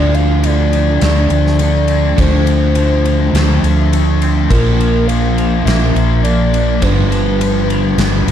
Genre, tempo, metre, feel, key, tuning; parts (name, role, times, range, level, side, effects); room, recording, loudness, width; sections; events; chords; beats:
rock, shoegaze and dream pop; 103 BPM; 4/4; straight; D minor; A4 = 439 Hz
hollow clarinet-like synth lead; melody; 0.0-8.3 s; Bb4 to F5; -20 LUFS; right 1 dB; chorus, slapback echo
twangy electric guitar; arpeggios; 0.0-8.3 s; F3 to D4; -26 LUFS; right 1 dB; analog chorus, slapback echo
overdriven semi-hollow guitar; riff; 0.0-8.3 s; G2 to D4; -19 LUFS; right 8 dB; reverse reverb
thick fuzz guitar; riff; 0.0-8.3 s; G2 to D4; -18 LUFS; left 10 dB; distortion, lush chorus
hollow-body short-scale fingered electric bass; bass; 0.0-8.3 s; G1 to D2; -14 LUFS; equal
gated 80s drum kit; drums; 0.1-8.3 s; kick drum, ride cymbal, snare drum; -21 LUFS; equal
light reverb, studio reverb; dark, warm production; -11 LUFS; side -10 dB against mid
0.0-8.3 A section
0.0 Dm7; 4.5 Bb; 6.8 G7
0.44 1.02 1.60 | 2.18 2.76 3.34 3.92 | 4.50 5.08 5.67 6.25 | 6.83 7.41 7.99